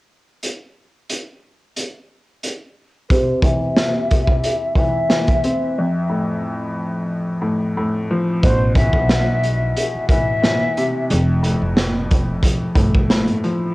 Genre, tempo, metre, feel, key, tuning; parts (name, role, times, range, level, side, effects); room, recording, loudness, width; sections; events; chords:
hip hop, boom-bap hip-hop; 90 BPM; 4/4; swing 54% on 16ths; A4 = 436 Hz
raw garage drum kit; drums; 0.4-13.6 s; hi-hat, kick drum, snare drum; -18 LUFS; equal; cassette tape
breathy mellow jazz flute; melody; 3.1-11.1 s; C5 to E5; -22 LUFS; left 2 dB; high-pass filter, low-pass filter, analog delay
warm upright piano; accompaniment; 3.1-13.7 s; F2 to C4; -21 LUFS; left 1 dB; high-pass filter, low-pass filter, cassette tape
upright bass; bass; 8.4-13.2 s; F1 to B1; -21 LUFS; equal; transformer saturation
light reverb, small room ambience; home recording on cassette; -16 LUFS; side -19 dB against mid
0.4-3.1 A section; 3.1-8.4 B section; 8.4-13.7 C section
filter sweep 3.1-8.4; break 5.8-8.4
0.4 N.C.; 3.1 C; 5.8 F; 8.4 Amadd9; 11.1 F